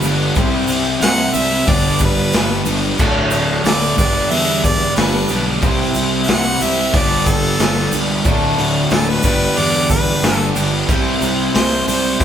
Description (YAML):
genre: classic rock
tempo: 91 BPM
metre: 4/4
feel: straight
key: unclear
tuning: A4 = 438 Hz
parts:
  - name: bright harmonica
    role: melody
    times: 0.0-12.2 s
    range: A4 to F#5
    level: -19 LUFS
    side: equal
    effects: none
  - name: picked steel-string acoustic guitar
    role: accompaniment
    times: 0.0-12.2 s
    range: C3 to A4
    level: -27 LUFS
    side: right 1 dB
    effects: none
  - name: string machine, violins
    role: sustained chords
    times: 0.0-12.2 s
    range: A3 to C5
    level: -31 LUFS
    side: right 1 dB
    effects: none
  - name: raw garage guitar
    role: riff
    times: 0.0-12.2 s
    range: D2 to C5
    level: -22 LUFS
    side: left 1 dB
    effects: overdrive
  - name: sludgy distorted guitar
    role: riff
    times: 0.0-12.2 s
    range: D2 to C4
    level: -22 LUFS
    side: left 2 dB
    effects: overdrive
  - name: sludgy distorted guitar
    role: riff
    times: 0.0-12.2 s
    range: D2 to C4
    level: -24 LUFS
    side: right 6 dB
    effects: overdrive
  - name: fuzz picked electric bass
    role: bass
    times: 0.0-12.2 s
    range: D1 to E2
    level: -23 LUFS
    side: equal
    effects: overdrive
  - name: raw garage drum kit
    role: drums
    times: 0.0-12.2 s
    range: crash cymbal, hi-hat, kick drum, snare drum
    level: -18 LUFS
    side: equal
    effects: none
  - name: egg shaker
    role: percussion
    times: 0.0-12.2 s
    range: none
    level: -31 LUFS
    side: right 7 dB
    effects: none
room: moderate large studio reverb, RT60 1.2 s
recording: band playing live in one room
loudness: -13 LUFS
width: side -9 dB against mid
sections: 0.0-12.2 A section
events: none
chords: 0.4 C; 1.7 Gadd9; 3.0 D; 4.0 Gadd9; 5.6 C; 6.9 Gadd9; 8.3 D; 9.2 Gadd9; 10.9 C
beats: | 0.36 1.02 1.68 2.34 | 3.00 3.65 4.31 4.97 | 5.63 6.29 6.94 7.60 | 8.26 8.92 9.57 10.23 | 10.89 11.54 12.20